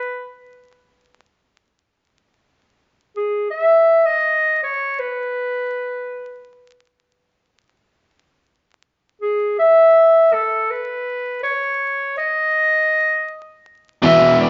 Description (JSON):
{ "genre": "rock", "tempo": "free time", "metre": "none", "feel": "none", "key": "unclear", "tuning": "A4 = 440 Hz", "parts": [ { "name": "warm clarinet", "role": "melody", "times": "0.0-14.5 s", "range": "G#4 to E5", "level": "-18 LUFS", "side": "equal", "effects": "none" }, { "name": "biting overdriven guitar", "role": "riff", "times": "14.0-14.5 s", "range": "E2 to E3", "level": "-17 LUFS", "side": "equal", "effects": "none" } ], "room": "wet stone room reverb, RT60 1.2 s", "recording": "rough rehearsal-room recording, tube saturation, vinyl crackle, nothing above 7.6 kHz", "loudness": "-18 LUFS", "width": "mono", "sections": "0.0-14.0 A section", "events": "none", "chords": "none" }